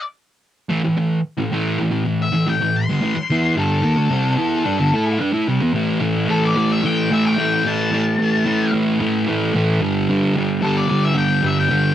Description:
rock; 110 BPM; 4/4; straight; A minor; A4 = 437 Hz
fuzz guitar; riff; 0.7-11.9 s; G2 to A4; -17 LUFS; right 1 dB; distortion, cassette tape
octave-fuzz lead guitar; melody; 2.2-11.9 s; A4 to C6; -22 LUFS; left 4 dB; distortion, cassette tape
wet booth ambience, RT60 0.2 s; home recording on cassette; -16 LUFS; side -11 dB against mid
0.0-5.8 A section; 5.8-11.9 B section
0.0 A5; 9.8 G5

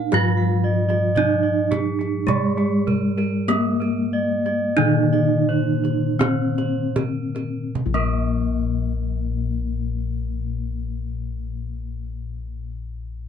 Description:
Javanese gamelan; 37-60 BPM; 4/4; straight; Bb slendro; A4 = 439 Hz
gamelan-type bronze metallophone; melody; 0.0-12.7 s; Ab3-45c to F4+25c; -24 LUFS; right 2 dB
gamelan-type bronze metallophone; accompaniment; 0.0-12.7 s; Eb3-35c to Bb3; -26 LUFS; left 1 dB
gamelan-type bronze metallophone; arpeggios; 0.0-12.7 s; Ab4-45c to F5+25c; -27 LUFS; right 3 dB
gamelan-type bossed gongs; bass; 0.0-12.6 s; Bb1 to Bb4; -25 LUFS; left 3 dB
kendang; percussion; 0.1-8.5 s; -27 LUFS; right 3 dB
moderate booth ambience, RT60 0.2 s; nothing above 10.4 kHz; -19 LUFS; side -8 dB against mid
0.0-7.7 A section; 7.7-13.3 B section
slowing down 0.0-7.7

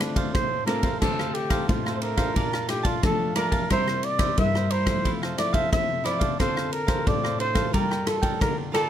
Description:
samba and choro; 89 BPM; 4/4; straight; D minor; A4 = 439 Hz
dark trumpet; melody; 0.0-8.9 s; D4 to E5; -27 LUFS; right 1 dB
cavaquinho; accompaniment; 0.0-8.9 s; D4 to A5; -32 LUFS; right 4 dB
nylon-string guitar; accompaniment; 0.0-8.9 s; G2 to A4; -28 LUFS; left 1 dB
swinging big-band drum kit; drums; 0.0-8.9 s; crash cymbal, kick drum, ride cymbal, rim click; -26 LUFS; equal
little or no reverb; close, detailed microphones; -22 LUFS; side -10 dB against mid
0.0-1.0 A section; 1.0-8.9 A section
0.0 Dm7; 2.4 Bbmaj7; 3.7 C7; 5.1 Fmaj7/C; 6.4 Dm7; 7.7 Gm9

